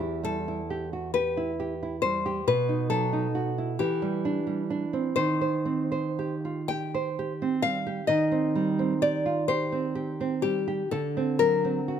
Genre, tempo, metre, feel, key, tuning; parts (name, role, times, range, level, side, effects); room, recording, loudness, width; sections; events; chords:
romantic duo for nylon-string guitar and classical guitar; 37-46 BPM (dotted quarters); 6/8; rubato; A4 = 439 Hz
nylon-string guitar; melody; 0.0-12.0 s; G4 to G5; -28 LUFS; left 5 dB
nylon-string guitar; accompaniment; 0.0-12.0 s; E2 to C5; -27 LUFS; right 4 dB
light reverb; close, detailed microphones; -25 LUFS; side -8 dB against mid
0.0-12.0 A section
0.0 Em; 2.5 B7; 3.8 Em7; 5.2 Cm/Eb; 10.9 D7